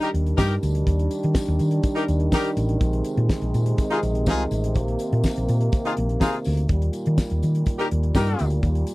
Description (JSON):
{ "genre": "disco", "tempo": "124 BPM", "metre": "4/4", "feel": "straight", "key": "Eb major", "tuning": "A4 = 440 Hz", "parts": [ { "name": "mellow French horn section", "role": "sustained chords", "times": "0.0-8.9 s", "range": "Bb2 to F4", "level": "-27 LUFS", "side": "right 1 dB", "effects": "none" }, { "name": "clear horn section", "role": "stabs", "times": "0.0-8.5 s", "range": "Eb4 to Bb4", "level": "-24 LUFS", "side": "left 2 dB", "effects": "none" }, { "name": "damped 70s drum kit", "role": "drums", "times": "0.0-8.9 s", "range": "hi-hat, kick drum, snare drum", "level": "-22 LUFS", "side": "equal", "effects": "none" }, { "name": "hollow-body short-scale fingered electric bass", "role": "bass", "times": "0.1-8.8 s", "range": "A1 to Eb3", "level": "-22 LUFS", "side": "equal", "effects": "none" }, { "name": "tambourine", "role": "percussion", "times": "0.4-8.9 s", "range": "none", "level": "-46 LUFS", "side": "left 8 dB", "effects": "none" } ], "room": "little or no reverb", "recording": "dry, close 1970s-style studio recording", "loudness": "-20 LUFS", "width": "side -20 dB against mid", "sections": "0.0-8.9 A section", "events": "none", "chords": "0.0 Ebmaj7; 2.8 Bb9sus4; 6.7 Eb" }